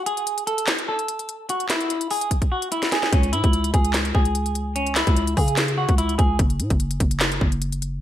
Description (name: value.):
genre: hip hop, trap.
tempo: 147 BPM.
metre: 4/4.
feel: half-time.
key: C# minor.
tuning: A4 = 439 Hz.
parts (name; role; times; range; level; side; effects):
semi-hollow electric guitar; melody; 0.0-6.4 s; C#4 to A4; -25 LUFS; equal; wide subtle chorus, ping-pong delay.
trap drum kit; drums; 0.1-7.9 s; handclaps, hi-hat, kick drum, snare drum; -21 LUFS; equal; gated reverb.
growling 808-style bass; bass; 3.1-8.0 s; F#1 to C#3; -23 LUFS; equal; none.
room: light reverb.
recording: bright 1980s-style digital production.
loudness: -19 LUFS.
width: side -12 dB against mid.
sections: 0.0-8.0 A section.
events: break 0.0-3.1, 6.4-8.0; drum fill 2.3-3.1.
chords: 0.0 N.C.; 3.1 C#m; 6.4 N.C..